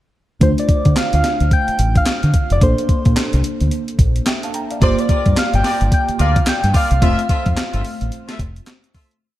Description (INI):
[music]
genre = R&B, new jack swing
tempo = 109 BPM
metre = 4/4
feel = swing 61% on 16ths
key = F major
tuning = A4 = 440 Hz
[part]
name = soft struck synth lead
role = melody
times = 0.4-8.9 s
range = C5 to G5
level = -21 LUFS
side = equal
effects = chorus
[part]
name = FM electric piano with soft pad layer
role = accompaniment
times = 0.4-9.2 s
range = A3 to Bb5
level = -24 LUFS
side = equal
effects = chorus, tremolo
[part]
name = deep dub fingered electric bass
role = bass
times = 0.4-8.6 s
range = F1 to D3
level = -18 LUFS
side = equal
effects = none
[part]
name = gated 80s digital drum machine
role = drums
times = 0.4-9.2 s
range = handclaps, hi-hat, kick drum, snare drum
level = -17 LUFS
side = equal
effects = gated reverb, gated reverb snare
[part]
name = clear horn section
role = stabs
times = 4.8-9.1 s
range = F4 to E5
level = -27 LUFS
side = left 2 dB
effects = none
[sound]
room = light reverb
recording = lossy compression artefacts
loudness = -14 LUFS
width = side -14 dB against mid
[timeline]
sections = 0.4-9.2 verse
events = fade-out 7.0-9.2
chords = 0.4 Dm7; 2.6 Bbmaj9; 4.8 Gm7; 7.0 Fmaj7